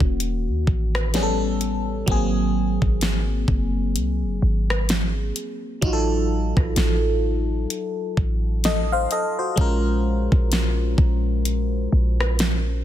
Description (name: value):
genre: contemporary R&B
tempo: 64 BPM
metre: 4/4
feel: swing 58% on 16ths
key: unclear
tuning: A4 = 440 Hz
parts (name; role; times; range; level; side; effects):
- FM electric piano; accompaniment; 0.0-12.8 s; Eb3 to F5; -25 LUFS; left 1 dB; chorus, phaser
- warm 808-style bass; bass; 0.0-12.8 s; Eb1 to Eb2; -22 LUFS; equal; none
- smooth R&B drum kit; drums; 0.0-12.6 s; hi-hat, kick drum, rim click, snare drum; -22 LUFS; equal; none
room: digital ambience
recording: dense, heavily limited modern master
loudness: -19 LUFS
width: side -11 dB against mid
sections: 0.0-12.8 A section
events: none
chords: 0.0 Ebm7; 1.1 A9; 2.1 Ab9; 5.8 F7b9/A; 9.6 Bbm7